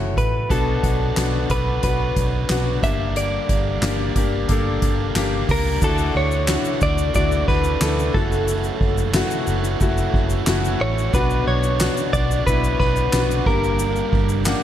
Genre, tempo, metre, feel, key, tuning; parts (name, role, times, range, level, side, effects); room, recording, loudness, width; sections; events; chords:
piano-driven pop; 90 BPM; 4/4; straight; D major; A4 = 440 Hz
direct-recorded clean electric guitar; melody; 0.0-14.4 s; A4 to E5; -24 LUFS; equal
warm concert grand piano; accompaniment; 0.0-14.6 s; G2 to F#5; -25 LUFS; left 6 dB
vintage muted fingered electric bass; bass; 0.0-14.5 s; F#1 to D2; -23 LUFS; right 1 dB
soft-mallet drum kit; drums; 0.2-14.6 s; crash cymbal, handclaps, hi-hat, kick drum, ride cymbal, snare drum; -23 LUFS; right 1 dB
overdriven electric guitar; riff; 0.5-14.6 s; F#2 to G4; -28 LUFS; right 8 dB
tube shaker; percussion; 5.8-14.6 s; -35 LUFS; left 9 dB
light reverb, small room ambience; -18 LUFS; side -11 dB against mid
0.0-5.8 A section; 5.8-14.6 B section
0.0 F#m7; 0.5 Bm; 2.8 Gm; 5.8 Dadd9; 8.1 F#m7; 11.1 Bm; 13.5 Gm